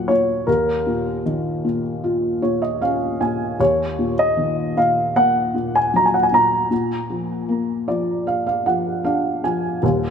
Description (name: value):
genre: pop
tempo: 77 BPM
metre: 4/4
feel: straight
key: unclear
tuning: A4 = 440 Hz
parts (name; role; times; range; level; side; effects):
- dark baby grand piano; melody; 0.0-9.4 s; Bb4 to Bb5; -18 LUFS; equal; none
- felt-muted upright piano; accompaniment; 0.0-10.1 s; Eb1 to Ab5; -20 LUFS; equal; none
room: moderate lush hall reverb, RT60 2.5 s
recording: none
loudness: -18 LUFS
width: side -7 dB against mid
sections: 0.0-9.8 A section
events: felt piano fill 2.0-3.6, 7.5-9.8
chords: 0.5 Bbm/Eb; 3.6 Ebm; 6.7 Bb